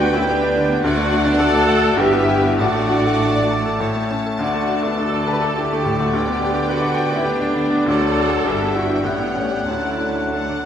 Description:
classical; 102 BPM; 3/4; uneven beats, rubato; D major; A4 = 441 Hz
clear baby grand piano; melody; 0.0-10.7 s; D2 to A5; -21 LUFS; left 1 dB
warm studio violin section; melody; 0.0-10.7 s; E5 to A5; -32 LUFS; left 4 dB
clear oboe; second line; 0.0-10.7 s; C#5 to G5; -26 LUFS; right 2 dB
mellow flute section; second line; 0.0-10.7 s; C#5 to B5; -27 LUFS; left 2 dB
rich studio violin section; second line; 0.0-10.7 s; B4 to F#5; -30 LUFS; left 3 dB
warm bassoon; accompaniment; 0.0-10.7 s; F#3 to B3; -28 LUFS; equal
warm studio viola section; accompaniment; 0.0-10.7 s; C#4 to B4; -24 LUFS; right 1 dB
mellow French horn section; sustained chords; 0.0-10.7 s; A3 to G4; -26 LUFS; left 1 dB
dark studio cello section; bass; 0.0-10.7 s; D2 to D3; -27 LUFS; right 3 dB
rich studio double bass section; bass; 0.0-10.7 s; G1 to D2; -28 LUFS; right 2 dB
wet scoring stage reverb, RT60 1.6 s; -16 LUFS; side -9 dB against mid
0.0-10.7 A section
0.0 G/D; 0.8 D; 2.0 Em/G; 2.6 D/A; 3.8 A; 4.4 D5; 6.2 G/D; 7.9 D; 8.5 Em/G; 9.1 A13; 9.7 D
0.29 | 0.84 1.41 1.99 | 2.60 3.21 3.81 | 4.41 5.00 5.58 | 6.16 6.71 7.28 | 7.89 8.47 9.06 | 9.68 10.33

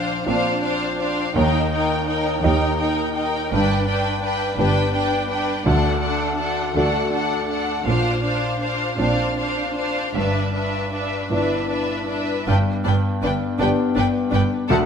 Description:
cinematic, emotional film score for orchestra; 51-57 BPM (dotted quarters); 6/8; rubato; A4 = 440 Hz
rich studio violin section; melody; 0.0-14.8 s; E5 to G5; -27 LUFS; left 2 dB
rich studio violin section; second line; 0.0-14.8 s; A4 to C5; -28 LUFS; left 3 dB
clear baby grand piano; accompaniment; 0.0-14.9 s; Bb1 to G4; -24 LUFS; left 1 dB
rich studio viola section; accompaniment; 0.0-14.8 s; D4 to Eb4; -26 LUFS; right 1 dB
rich studio cello section; bass; 0.0-14.8 s; Eb2 to D3; -27 LUFS; right 2 dB
warm studio double bass section; bass; 0.0-14.8 s; G1 to Eb2; -26 LUFS; right 3 dB
mellow French horn section; sustained chords; 12.5-14.9 s; A3 to F#4; -24 LUFS; left 5 dB
moderate scoring stage reverb, RT60 1.5 s; minimal, uncompressed stereo recording; -19 LUFS; side -7 dB against mid
0.0-12.5 A section; 12.5-14.9 A section
0.0 Bbadd9; 1.4 Eb; 3.5 G; 5.7 D; 7.9 Bbadd9; 10.2 G6; 12.5 G
0.26 | 1.35 2.44 | 3.52 4.59 | 5.66 6.76 | 7.86 8.99 | 10.15 11.32 | 12.48 13.60 | 14.70

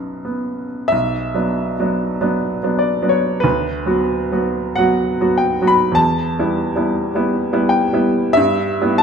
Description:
classical, romantic nocturne for solo piano; 42-53 BPM; 4/4; rubato; B minor; A4 = 440 Hz
clear baby grand piano; solo; 0.0-9.0 s; B1 to B5; -15 LUFS; equal
wet recital hall reverb, RT60 1.6 s; minimal, uncompressed stereo recording; -15 LUFS; side -6 dB against mid
0.9-9.0 A section
0.0 B5; 0.9 Bm; 3.4 Bm/D; 6.0 Em; 8.4 Em/G
| 0.92 2.20 3.44 4.78 | 5.99 7.13 8.37

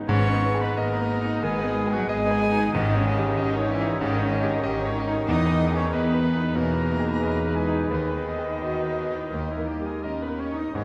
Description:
classical, romantic movement for piano and orchestra; 82-98 BPM; 4/4; rubato; G# minor; A4 = 442 Hz
clear concert grand piano; melody; 0.0-10.8 s; D#2 to D#5; -29 LUFS; equal
muted symphonic viola section; accompaniment; 0.0-10.8 s; A#3 to E4; -40 LUFS; equal
muted symphonic violin section; melody; 0.1-10.8 s; A#4 to D#5; -41 LUFS; equal
bright concert flute; second line; 0.1-10.8 s; D#5 to D#6; -36 LUFS; equal
clear oboe; second line; 0.1-10.8 s; D#4 to D#5; -39 LUFS; equal
muted symphonic violin section; second line; 0.1-10.8 s; E4 to B4; -43 LUFS; equal
mellow French horn section; sustained chords; 0.1-10.8 s; B3 to G#4; -36 LUFS; equal
dark trumpet section; stabs; 0.1-10.8 s; A#4 to D#5; -38 LUFS; equal
muted symphonic cello section; bass; 0.1-10.8 s; D#3 to D#4; -32 LUFS; equal
muted symphonic double bass section; bass; 0.1-10.8 s; G#1 to E2; -34 LUFS; equal
timpani; percussion; 0.1-3.7, 10.7-10.8 s; G#2; -34 LUFS; equal
clear bassoon; accompaniment; 1.4-10.4 s; A#2 to D#3; -36 LUFS; equal
moderate scoring stage reverb, RT60 2.0 s; -24 LUFS; mono
0.1-10.8 A section
0.1 G#m; 2.7 D#7/G#; 5.3 Emaj7; 7.9 G#m/D#; 9.3 D#
| 0.09 0.78 1.44 2.09 | 2.75 3.39 4.01 4.64 | 5.27 5.91 6.55 7.21 | 7.91 8.62 9.33 10.03 | 10.75

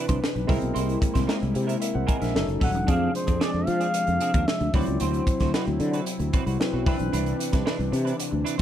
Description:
polished 1980s jazz-funk pop; 113 BPM; 4/4; straight; C lydian; A4 = 441 Hz
barky tine electric piano; accompaniment; 0.0-8.6 s; E3 to G#5; -30 LUFS; left 3 dB; wide subtle chorus
warm analog pad; sustained chords; 0.0-8.6 s; C3 to B4; -34 LUFS; equal; chorus
semi-hollow electric guitar; riff; 0.0-8.6 s; C4 to C5; -33 LUFS; right 8 dB; analog chorus
sustaining fretless electric bass; bass; 0.1-8.6 s; D#1 to F3; -26 LUFS; equal; ensemble chorus
crisp fusion drum kit; drums; 0.1-8.6 s; hi-hat, kick drum, snare drum; -27 LUFS; equal
breathy flugelhorn; melody; 2.6-5.5 s; C5 to F#5; -28 LUFS; left 1 dB
little or no reverb; -22 LUFS; side -10 dB against mid
0.0-8.6 A section
0.5 Caug7; 2.3 F#m6; 2.9 Fm6; 4.7 D13; 6.9 Cmaj9
0.23 | 0.76 1.29 1.82 2.35 | 2.88 3.41 3.94 4.47 | 5.00 5.54 6.07 6.60 | 7.13 7.66 8.19

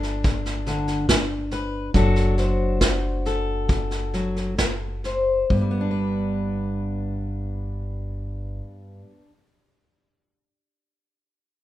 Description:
acoustic folk duo or small band; 65-72 BPM; 4/4; straight; G major; A4 = 440 Hz
fingerpicked steel-string acoustic guitar; accompaniment; 0.0-9.4 s; G2 to C5; -26 LUFS; left 2 dB
upright bass; bass; 0.0-8.6 s; F#1 to G1; -27 LUFS; equal
soft brush drum kit; drums; 0.0-5.7 s; kick drum, snare drum; -24 LUFS; equal
little or no reverb; minimal, uncompressed stereo recording; -21 LUFS; side -14 dB against mid
0.0-5.5 A section; 5.5-9.2 B section
slowing down 0.0-5.5
0.0 G; 1.9 D/F#; 5.5 G
0.24 1.08 | 1.94 2.80 3.69 4.59 | 5.50 6.43 7.36 8.29

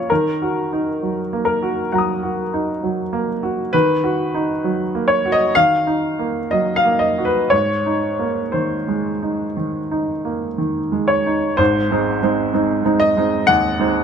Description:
neoclassical minimalist piano; 58-67 BPM; 4/4; rubato; A4 = 440 Hz
clear baby grand piano; solo; 0.0-14.0 s; Ab1 to Eb6; -16 LUFS; equal
light reverb; close, detailed microphones; -16 LUFS; side -7 dB against mid
0.0-11.6 A section; 11.6-14.0 B section
0.1 Ebm; 7.5 Abadd9; 11.6 Ab
| 0.10 1.00 1.91 2.82 | 3.73 4.64 5.56 6.52 | 7.53 8.55 9.58 10.59 | 11.60 12.54 13.49

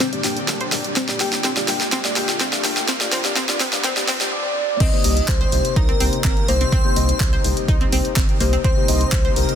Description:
progressive house; 125 BPM; 4/4; straight; C minor; A4 = 440 Hz
shimmering ambient pad; sustained chords; 0.0-9.6 s; Bb2 to G4; -30 LUFS; equal; chorus, built-in reverb, sidechain pumping
analog pluck; arpeggios; 0.0-9.3 s; Bb3 to C5; -28 LUFS; equal; chorus, sidechain pumping, dub echo
deep house drum kit; drums; 0.0-9.6 s; crash cymbal, handclaps, hi-hat, snare drum; -22 LUFS; equal; high-pass filter on snare, sidechain pumping on hats, high-pass filter on hats, sidechain pumping on cymbals, high-pass filter on cymbals
riser; sound effects; 0.0-4.3 s; -31 LUFS; right 2 dB
deep mellow chord stab; stabs; 0.1-9.6 s; G2 to G5; -26 LUFS; left 5 dB; chorus, sidechain pumping, dub echo
warm velvety synth lead; melody; 4.3-9.6 s; Bb4 to Eb5; -26 LUFS; equal; chorus, tremolo, sidechain pumping, dub echo
airy dreamy lead; second line; 4.8-9.6 s; Bb4 to Eb5; -29 LUFS; right 1 dB; chorus, sidechain pumping
saturated sub bass; bass; 4.8-9.4 s; G1 to C2; -22 LUFS; right 1 dB; sidechain pumping
electronic kick drum; drums; 4.8-9.2 s; -19 LUFS; right 1 dB
light reverb; dense, heavily limited modern master, high-pass filter; -16 LUFS; side -9 dB against mid
0.0-4.8 A section; 4.8-9.6 B section
build-up 0.0-4.8; drum fill 0.0-4.3; riser 0.0-4.3; filter sweep on synth pluck 0.0-4.8; filter sweep on synth stab 0.0-4.8; drop 4.8-9.6
0.0 Gm; 4.8 Cm7
0.01 0.48 | 0.96 1.45 1.93 2.40 | 2.88 3.37 3.85 4.33 | 4.80 5.29 5.76 6.25 | 6.72 7.21 7.68 8.16 | 8.64 9.12

